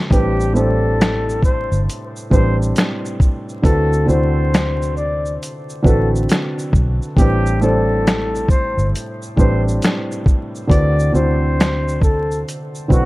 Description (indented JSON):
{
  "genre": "lo-fi hip hop",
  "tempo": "68 BPM",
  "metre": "4/4",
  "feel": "swing 63% on 16ths",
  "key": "A dorian",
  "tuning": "A4 = 439 Hz",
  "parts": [
    { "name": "felt-muted upright piano", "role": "accompaniment", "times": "0.0-13.1 s", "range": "A2 to C5", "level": "-21 LUFS", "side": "right 1 dB", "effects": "cassette tape, low-pass filter" },
    { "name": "breathy flugelhorn", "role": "melody", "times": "0.1-13.1 s", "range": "F#4 to D5", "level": "-23 LUFS", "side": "left 2 dB", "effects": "low-pass filter, tape echo" },
    { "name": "vintage muted fingered electric bass", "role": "bass", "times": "0.1-13.1 s", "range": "G1 to D2", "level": "-19 LUFS", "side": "equal", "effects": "none" },
    { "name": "lo-fi sampler-style drum kit", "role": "drums", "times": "0.1-13.1 s", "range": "finger snaps, hi-hat, kick drum, shaker, snare drum", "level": "-16 LUFS", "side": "equal", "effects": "none" }
  ],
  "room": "little or no reverb",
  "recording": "vinyl crackle",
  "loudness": "-14 LUFS",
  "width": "side -19 dB against mid",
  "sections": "0.0-13.1 A section",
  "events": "none",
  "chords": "0.1 Am11; 3.6 D13; 7.2 Am11; 10.7 D13"
}